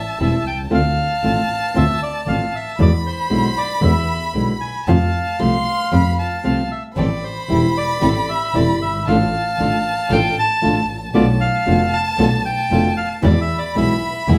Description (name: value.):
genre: tango.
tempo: 115 BPM.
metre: 4/4.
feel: rubato.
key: A minor.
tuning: A4 = 441 Hz.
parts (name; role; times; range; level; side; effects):
bandoneon; melody; 0.0-14.4 s; C5 to A5; -24 LUFS; equal; none.
warm violin; second line; 0.0-14.4 s; A5 to C6; -28 LUFS; equal; none.
flamenco guitar; accompaniment; 0.2-14.4 s; B2 to F4; -22 LUFS; equal; none.
warm double bass; bass; 0.2-14.4 s; E1 to F2; -22 LUFS; equal; none.
warm chamber string section; stabs; 7.0-14.4 s; B3 to A4; -30 LUFS; equal; none.
room: wet studio reverb, RT60 0.8 s.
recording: heard from further back in the room.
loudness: -18 LUFS.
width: mono.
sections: 0.0-14.4 A section.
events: none.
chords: 0.0 Am7; 0.7 Dm7; 2.8 E7; 4.9 F; 7.0 Am7; 9.1 Dm/A; 11.1 Bm7b5; 13.2 E.